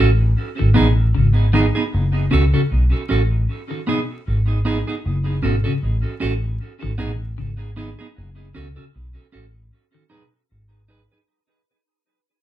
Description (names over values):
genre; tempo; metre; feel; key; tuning
reggae; 77 BPM; 4/4; swing 57% on 16ths; unclear; A4 = 440 Hz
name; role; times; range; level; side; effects
clean electric guitar; accompaniment; 0.0-11.2 s; B3 to B4; -23 LUFS; right 4 dB; tube saturation, tape echo
vintage muted fingered electric bass; bass; 0.0-11.0 s; F#1 to C#2; -18 LUFS; equal; none
clean electric guitar; arpeggios; 0.6-10.3 s; B2 to D#3; -25 LUFS; left 5 dB; tremolo
room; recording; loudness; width
moderate studio reverb, RT60 0.5 s; band playing live in one room, vinyl crackle; -17 LUFS; side -13 dB against mid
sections
0.0-11.3 A section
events
fade-out 0.0-11.3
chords
0.4 G#m; 1.9 F#m; 3.5 G#m; 5.0 F#m; 6.6 G#m; 8.2 F#m; 9.7 G#m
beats
0.36 1.14 | 1.92 2.70 3.48 4.26 | 5.04 5.82 6.60 7.38 | 8.16 8.94 9.72 10.50